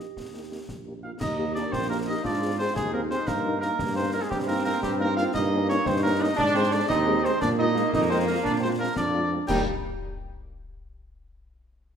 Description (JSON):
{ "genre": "military-style march for wind band", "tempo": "116 BPM (dotted quarters)", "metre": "6/8", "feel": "straight", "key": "Eb major", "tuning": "A4 = 440 Hz", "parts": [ { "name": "warm cornet", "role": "melody", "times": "0.0-9.6 s", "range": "G4 to G5", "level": "-29 LUFS", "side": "equal", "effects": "none" }, { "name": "warm euphonium", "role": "second line", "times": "0.0-9.6 s", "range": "G3 to G4", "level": "-30 LUFS", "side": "right 3 dB", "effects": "none" }, { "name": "dark French horn section", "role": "accompaniment", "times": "0.0-9.6 s", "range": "G3 to Ab4", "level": "-33 LUFS", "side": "left 4 dB", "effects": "none" }, { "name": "mellow tuba", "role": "bass", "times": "0.0-9.6 s", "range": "Bb1 to Bb2", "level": "-29 LUFS", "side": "right 2 dB", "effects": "none" }, { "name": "concert snare drum, concert bass drum and clash cymbals", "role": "drums", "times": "0.0-9.7 s", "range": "none", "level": "-36 LUFS", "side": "left 2 dB", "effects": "none" }, { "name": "clear trombone section", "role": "sustained chords", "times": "1.2-9.6 s", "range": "Bb3 to F4", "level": "-30 LUFS", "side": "right 1 dB", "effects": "none" } ], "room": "wet scoring stage reverb, RT60 1.5 s", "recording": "none", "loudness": "-22 LUFS", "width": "side -7 dB against mid", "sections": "0.0-1.2 A section; 1.2-9.5 A section; 9.5-10.5 B section", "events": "none", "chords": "0.0 Eb; 2.2 Ab; 3.3 Eb/G; 5.3 Eb7/G; 6.4 Ab; 7.4 Bb7sus4; 8.4 Bb9; 9.5 Eb", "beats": "| 0.17 0.69 | 1.20 1.72 | 2.24 2.76 | 3.27 3.79 | 4.31 4.83 | 5.34 5.86 | 6.38 6.89 | 7.41 7.93 | 8.44 8.96 | 9.48" }